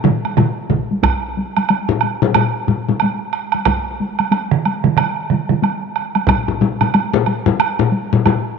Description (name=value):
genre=japanese traditional, taiko drum ensemble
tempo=92 BPM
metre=4/4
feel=swing 60% on 16ths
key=none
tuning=none
part: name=solo taiko drums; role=percussion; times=0.0-5.6 s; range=none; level=-18 LUFS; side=right 10 dB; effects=none
part: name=taiko ensemble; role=percussion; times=0.0-8.4 s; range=none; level=-21 LUFS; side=left 1 dB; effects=none
part: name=taiko ensemble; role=percussion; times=0.0-8.4 s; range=none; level=-17 LUFS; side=left 8 dB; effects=none
part: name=woodblock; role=percussion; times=0.2-8.4 s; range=none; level=-20 LUFS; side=right 9 dB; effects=none
part: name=taiko ensemble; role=percussion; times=0.7-6.5 s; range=none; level=-21 LUFS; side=right 3 dB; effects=none
room=moderate plate reverb, RT60 2.9 s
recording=1960s-style stereo with parts hard left and right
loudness=-15 LUFS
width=side -5 dB against mid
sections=0.0-1.0 A section; 1.0-8.6 B section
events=none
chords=none